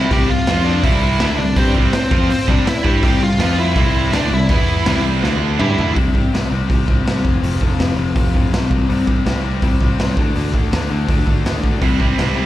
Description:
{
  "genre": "punk rock",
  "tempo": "164 BPM",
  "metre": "4/4",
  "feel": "straight",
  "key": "C major",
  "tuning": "A4 = 440 Hz",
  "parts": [
    { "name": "high-gain lead guitar", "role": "melody", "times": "0.0-5.9 s", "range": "C4 to G5", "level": "-21 LUFS", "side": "left 1 dB", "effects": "distortion, slapback echo, digital delay" },
    { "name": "distorted electric guitar", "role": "riff", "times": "0.0-12.5 s", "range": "F2 to G4", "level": "-22 LUFS", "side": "left 7 dB", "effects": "distortion, slapback echo" },
    { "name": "overdriven electric guitar", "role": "riff", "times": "0.0-6.0, 11.8-12.5 s", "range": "C3 to G4", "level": "-22 LUFS", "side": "right 10 dB", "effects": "slapback echo" },
    { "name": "modern bright picked electric bass", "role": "bass", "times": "0.0-12.5 s", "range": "F1 to G2", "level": "-19 LUFS", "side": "equal", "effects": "none" },
    { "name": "raw garage drum kit", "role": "drums", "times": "0.1-12.3 s", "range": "hi-hat, kick drum, snare drum, toms", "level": "-18 LUFS", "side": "equal", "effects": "none" }
  ],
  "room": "small room ambience",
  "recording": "live gig heard through the venue's PA, recital hall reverb",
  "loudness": "-14 LUFS",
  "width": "side -14 dB against mid",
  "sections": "0.1-6.0 A section; 6.0-12.5 B section",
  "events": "drum fill 5.2-6.0",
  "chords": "0.1 C5; 0.5 F5; 0.8 C; 3.4 F5; 3.8 C; 4.5 E5; 4.9 C; 5.2 D5; 5.6 Dsus24; 6.0 C5; 7.2 F5; 8.7 C5; 10.2 D5; 11.8 C",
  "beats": "| 0.11 0.48 0.84 1.21 | 1.57 1.94 2.30 2.67 | 3.03 3.40 3.77 4.13 | 4.50 4.86 5.23 5.59 | 5.96 6.33 6.69 7.06 | 7.43 7.79 8.16 8.53 | 8.89 9.26 9.62 9.99 | 10.36 10.72 11.09 11.45 | 11.82 12.19"
}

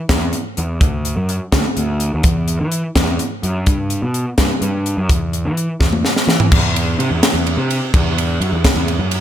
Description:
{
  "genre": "math rock and midwest emo",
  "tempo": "84 BPM (dotted quarters)",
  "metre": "6/8",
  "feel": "straight",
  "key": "E minor",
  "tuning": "A4 = 442 Hz",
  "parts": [
    { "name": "fuzz picked electric bass", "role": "bass", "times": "0.1-9.2 s", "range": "D2 to E3", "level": "-18 LUFS", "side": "equal", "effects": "overdrive" },
    { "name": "crisp fusion drum kit", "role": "drums", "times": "0.1-9.2 s", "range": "crash cymbal, hi-hat, kick drum, ride cymbal, snare drum, toms", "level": "-16 LUFS", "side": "equal", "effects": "none" }
  ],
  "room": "moderate recital hall reverb, RT60 1.4 s",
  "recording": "big arena sound",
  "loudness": "-15 LUFS",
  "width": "side -11 dB against mid",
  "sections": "0.0-6.5 A section; 6.5-9.2 B section",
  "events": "drum fill 5.8-6.5",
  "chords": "none",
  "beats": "0.09 | 0.80 1.52 | 2.23 2.95 | 3.67 4.38 | 5.09 5.80 | 6.51 7.22 | 7.93 8.64"
}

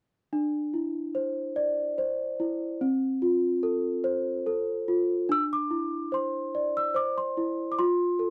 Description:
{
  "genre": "children's music",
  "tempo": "72 BPM",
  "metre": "3/4",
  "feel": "straight",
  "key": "C major",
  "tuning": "A4 = 444 Hz",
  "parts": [
    { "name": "celesta", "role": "melody", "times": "0.3-8.3 s", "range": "C4 to E6", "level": "-28 LUFS", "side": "equal", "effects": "none" }
  ],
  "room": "moderate studio ambience, RT60 0.5 s",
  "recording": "close, detailed microphones",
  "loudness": "-28 LUFS",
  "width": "mono",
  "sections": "0.3-5.3 A section; 5.3-8.3 B section",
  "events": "none",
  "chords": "0.3 Cadd9; 2.8 F; 5.3 Cadd9; 7.8 F",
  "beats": "| 0.32 1.16 1.99 | 2.81 3.63 4.46 | 5.29 6.13 6.96 | 7.79"
}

